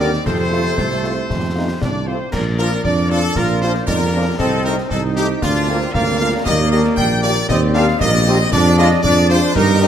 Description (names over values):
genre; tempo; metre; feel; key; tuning
military-style march for wind band; 116 BPM; 2/4; straight; Bb major; A4 = 436 Hz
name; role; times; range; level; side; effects
bright trumpet section; melody; 0.0-9.9 s; F4 to G5; -22 LUFS; equal; none
bright flute section; second line; 0.0-9.9 s; F4 to G5; -24 LUFS; left 2 dB; none
dark euphonium; second line; 0.0-2.0 s; C3 to D3; -29 LUFS; right 3 dB; none
mellow woodwind section; second line; 0.0-9.9 s; G4 to Eb5; -26 LUFS; left 2 dB; none
warm French horn section; accompaniment; 0.0-9.9 s; F3 to G4; -25 LUFS; left 3 dB; none
mellow trombone section; sustained chords; 0.0-9.9 s; A3 to F4; -22 LUFS; right 1 dB; none
dark tuba; bass; 0.0-9.9 s; Bb1 to G2; -18 LUFS; right 2 dB; none
concert snare drum, clash cymbals and concert bass drum; drums; 0.0-9.9 s; none; -25 LUFS; left 1 dB; none
room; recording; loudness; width
moderate scoring stage reverb, RT60 1.8 s; none; -14 LUFS; side -9 dB against mid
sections
0.0-2.3 A section; 2.3-9.9 B section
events
none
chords
0.3 F; 2.3 Bb; 4.4 Adim/C; 5.4 Bb/D; 6.5 Ebmaj7; 8.5 Ddim/F